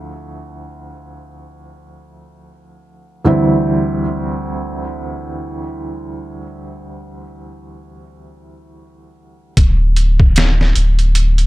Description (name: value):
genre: trip hop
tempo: free time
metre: none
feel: none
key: unclear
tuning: A4 = 439 Hz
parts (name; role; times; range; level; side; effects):
- felt-muted upright piano; accompaniment; 0.0-9.5 s; D2 to E4; -19 LUFS; right 1 dB; tremolo, tape echo
- warm sub bass; bass; 9.6-11.5 s; D1; -13 LUFS; equal; none
- trip hop sampler-style drum kit; drums; 9.6-11.5 s; hi-hat, kick drum, snare drum; -14 LUFS; equal; small room ambience
room: little or no reverb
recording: dark, warm production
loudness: -14 LUFS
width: side -18 dB against mid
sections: 0.0-9.6 A section; 9.6-11.5 B section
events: none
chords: 0.0 Dm9; 3.3 C/D; 9.6 N.C.